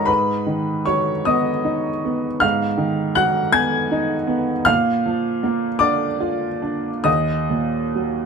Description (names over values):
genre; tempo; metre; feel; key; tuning
neoclassical minimalist piano; 46-55 BPM (dotted quarters); 6/8; rubato; unclear; A4 = 441 Hz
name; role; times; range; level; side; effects
clear upright piano; solo; 0.0-8.3 s; Eb2 to Ab6; -18 LUFS; equal; none
room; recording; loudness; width
moderate small room ambience, RT60 0.5 s; band playing live in one room; -18 LUFS; side -5 dB against mid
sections
0.0-8.3 A section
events
none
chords
0.1 Abm7; 4.7 Bb; 7.1 Ebm